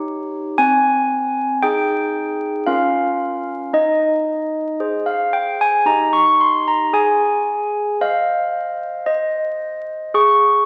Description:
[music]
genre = classical, tune for handbells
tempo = 56 BPM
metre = 3/4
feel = straight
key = Ab major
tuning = A4 = 440 Hz
[part]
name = handbells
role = solo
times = 0.0-10.7 s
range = C4 to Db6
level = -18 LUFS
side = equal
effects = none
[sound]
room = wet scoring stage reverb, RT60 2.0 s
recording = very old 78 rpm record, vinyl crackle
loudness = -18 LUFS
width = mono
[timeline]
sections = 0.0-10.7 A section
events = none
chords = 0.0 Eb7; 0.6 Ab/C; 2.7 Bbm/Db; 3.7 Ab/Eb; 5.9 Eb; 6.9 Ab; 10.2 Bbm7/Ab (rootless)

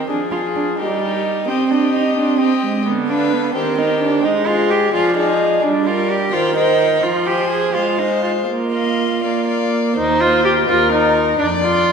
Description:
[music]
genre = quick classical-period movement for string quartet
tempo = 86 BPM (dotted quarters)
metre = 6/8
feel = rubato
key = Eb major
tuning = A4 = 440 Hz
[part]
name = warm violin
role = melody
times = 0.0-11.9 s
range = Ab4 to Ab5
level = -26 LUFS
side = left 8 dB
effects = none
[part]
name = rich violin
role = second line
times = 0.0-11.9 s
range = G4 to Eb5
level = -22 LUFS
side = left 2 dB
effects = none
[part]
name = rich cello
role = bass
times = 0.0-11.9 s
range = Eb2 to Ab4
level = -19 LUFS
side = right 3 dB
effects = none
[part]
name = rich viola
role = accompaniment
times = 0.1-11.9 s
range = D3 to G4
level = -18 LUFS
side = right 1 dB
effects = none
[sound]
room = wet concert hall reverb, RT60 1.8 s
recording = none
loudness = -14 LUFS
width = side -6 dB against mid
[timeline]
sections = 0.0-10.0 A section; 10.0-11.9 A section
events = none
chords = 0.1 Ddim/F (rootless); 0.8 Eb/G; 1.5 Cm; 2.9 Bdim/D; 3.6 Cm/Eb; 4.2 Ab; 4.9 Ddim/F; 5.6 Gm; 6.3 Cm/Eb; 7.0 Fm; 7.7 Fm/Ab; 8.5 Bbsus4; 10.0 Eb5; 11.4 Dm/F

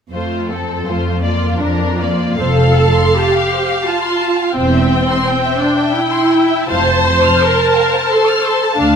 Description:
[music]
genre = classical, slow romantic movement for string orchestra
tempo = 72-88 BPM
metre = 3/4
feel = rubato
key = F major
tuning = A4 = 440 Hz
[part]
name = warm symphonic violin section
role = melody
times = 0.1-9.0 s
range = A4 to A5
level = -21 LUFS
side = left 5 dB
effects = none
[part]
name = warm symphonic violin section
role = second line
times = 0.1-9.0 s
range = D4 to F6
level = -20 LUFS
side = left 2 dB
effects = none
[part]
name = warm symphonic viola section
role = accompaniment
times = 0.1-9.0 s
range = A3 to C5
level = -15 LUFS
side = right 1 dB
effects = none
[part]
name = warm symphonic cello section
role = bass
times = 0.1-9.0 s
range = D2 to F2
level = -19 LUFS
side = right 1 dB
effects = none
[part]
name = warm symphonic double bass section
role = bass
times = 2.4-9.0 s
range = E1 to D2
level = -20 LUFS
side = right 2 dB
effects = none
[sound]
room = moderate scoring stage reverb, RT60 1.9 s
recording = none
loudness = -12 LUFS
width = side -7 dB against mid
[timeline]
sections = 0.1-2.4 A section; 2.4-9.0 B section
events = none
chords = 0.1 F; 1.2 Bb/F; 2.4 F; 4.6 C/E; 6.7 F

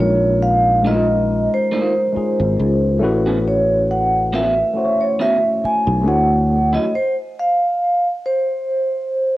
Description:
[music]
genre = R&B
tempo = 69 BPM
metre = 4/4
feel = straight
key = unclear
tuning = A4 = 444 Hz
[part]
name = vibraphone with medium mallets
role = melody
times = 0.0-9.4 s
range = C5 to Ab5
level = -17 LUFS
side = right 1 dB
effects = cassette tape, plate reverb
[part]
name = mellow tine electric piano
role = accompaniment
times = 0.0-6.9 s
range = Ab3 to C#5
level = -20 LUFS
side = left 2 dB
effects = overdrive, phaser, cassette tape, plate reverb
[part]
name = sustaining fretless electric bass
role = bass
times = 0.0-6.8 s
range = Ab1 to D2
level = -19 LUFS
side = equal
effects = wide subtle chorus
[part]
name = electric guitar through a small old amp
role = second line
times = 0.8-6.9 s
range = F#3 to F#4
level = -24 LUFS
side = right 2 dB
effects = cassette tape, plate reverb
[sound]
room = moderate studio reverb, RT60 0.6 s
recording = home recording on cassette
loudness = -15 LUFS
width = side -16 dB against mid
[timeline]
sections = 0.0-9.4 A section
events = stop 6.9-9.4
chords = 0.0 Bbm11; 3.0 A69; 6.1 Dmaj9; 6.9 N.C.

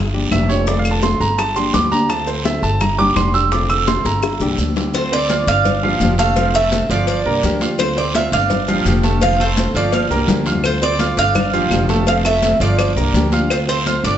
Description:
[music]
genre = latin, Cuban son and guajira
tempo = 168 BPM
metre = 4/4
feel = straight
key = unclear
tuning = A4 = 440 Hz
[part]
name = upright bass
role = bass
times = 0.0-14.2 s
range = F1 to D2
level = -20 LUFS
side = equal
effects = none
[part]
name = nylon-string guitar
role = accompaniment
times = 0.1-14.2 s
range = D3 to G4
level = -23 LUFS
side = left 3 dB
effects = none
[part]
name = bongos and cowbell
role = percussion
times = 0.1-14.2 s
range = none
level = -26 LUFS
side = left 5 dB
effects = none
[part]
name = congas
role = percussion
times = 0.1-14.2 s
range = none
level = -24 LUFS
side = left 1 dB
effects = none
[part]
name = clear baby grand piano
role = arpeggios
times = 0.3-14.2 s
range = F3 to F6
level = -21 LUFS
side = right 4 dB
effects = none
[part]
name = claves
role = percussion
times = 0.3-4.4, 10.6-13.7 s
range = none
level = -29 LUFS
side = left 1 dB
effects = none
[part]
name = guiro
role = percussion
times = 0.3-14.2 s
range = none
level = -29 LUFS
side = right 5 dB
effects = none
[part]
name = maracas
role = percussion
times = 0.3-14.2 s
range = none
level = -36 LUFS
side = left 4 dB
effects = none
[part]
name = Cuban tres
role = melody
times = 4.9-14.2 s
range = C5 to F5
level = -19 LUFS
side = right 2 dB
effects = none
[sound]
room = wet large studio reverb, RT60 1.3 s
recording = nothing above 7.9 kHz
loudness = -14 LUFS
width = side -10 dB against mid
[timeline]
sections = 0.0-4.9 A section; 4.9-14.2 B section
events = grand piano solo 0.0-4.9; drum fill 4.1-4.9, 9.9-10.6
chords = 0.0 Gm7; 0.7 F6; 1.4 Gm7; 2.1 Dm7; 2.8 Gm7; 3.5 F6; 4.2 Gm7; 4.9 Dm7; 5.7 Gm7; 6.4 F6; 7.1 Gm7; 7.8 Dm7; 8.5 Gm7; 9.2 F6; 9.9 Gm7; 10.6 Dm7; 11.4 Gm7; 12.1 F6; 12.8 Gm7; 13.5 Dm7

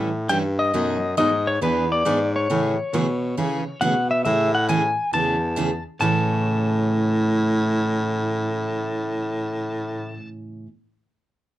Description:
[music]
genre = country, western swing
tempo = 136 BPM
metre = 4/4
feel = swing 67% on 8ths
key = A major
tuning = A4 = 439 Hz
[part]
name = picked steel-string acoustic guitar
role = accompaniment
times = 0.0-10.7 s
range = A2 to A4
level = -25 LUFS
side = right 3 dB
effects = none
[part]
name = breathy baritone saxophone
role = bass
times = 0.0-10.3 s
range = E2 to C#3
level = -24 LUFS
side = left 1 dB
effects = none
[part]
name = clean lap steel guitar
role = melody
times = 0.3-10.3 s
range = B4 to A5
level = -24 LUFS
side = left 2 dB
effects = none
[sound]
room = light reverb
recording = none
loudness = -20 LUFS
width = side -14 dB against mid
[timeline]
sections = 0.0-4.3 A section; 4.3-6.0 B section; 6.0-9.5 C section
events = none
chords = 0.0 A7; 0.7 B7; 1.6 E7; 2.5 Amaj7; 6.0 A

